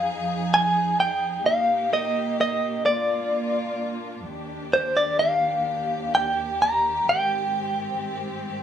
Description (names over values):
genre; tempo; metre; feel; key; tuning
folk; 43 BPM (dotted quarters); 6/8; straight; Eb major; A4 = 441 Hz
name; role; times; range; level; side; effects
direct-recorded clean electric guitar; melody; 0.0-8.6 s; C5 to Bb5; -22 LUFS; equal; tremolo
warm studio string section; sustained chords; 0.0-8.6 s; Eb2 to Ab4; -29 LUFS; right 1 dB; none
room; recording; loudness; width
wet studio reverb, RT60 0.6 s; band playing live in one room; -21 LUFS; side -9 dB against mid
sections
0.0-8.6 A section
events
none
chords
0.0 Fm7; 1.5 Eb/Bb; 2.9 Bb; 4.2 Ebmaj7; 7.0 Abmaj7